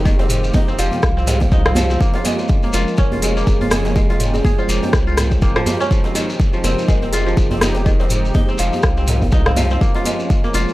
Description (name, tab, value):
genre	afro house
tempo	123 BPM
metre	4/4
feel	swing 57% on 16ths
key	F minor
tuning	A4 = 441 Hz
part	warm analog pad	sustained chords	0.0-10.7 s	C3 to G5	-26 LUFS	equal	chorus, sidechain pumping
part	kora	arpeggios	0.0-10.7 s	Eb3 to Ab4	-23 LUFS	right 1 dB	sidechain pumping, analog delay
part	warm sub bass	bass	0.0-10.7 s	F1 to C2	-20 LUFS	equal	sidechain pumping
part	electronic kick drum	drums	0.1-10.4 s	none	-16 LUFS	equal	none
part	djembe	percussion	0.1-10.5 s	none	-24 LUFS	right 2 dB	none
part	shekere	percussion	0.1-10.7 s	none	-29 LUFS	left 1 dB	none
part	kalimba	melody	0.2-10.7 s	Ab4 to F5	-26 LUFS	left 1 dB	analog delay
part	afro-pop drum kit	drums	0.3-10.7 s	hi-hat, rim click, toms	-21 LUFS	equal	none
room	small room ambience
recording	dry, gritty hardware recording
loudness	-14 LUFS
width	side -17 dB against mid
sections	0.0-10.7 A section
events	none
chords	0.0 Fm9; 2.0 Bbm7/F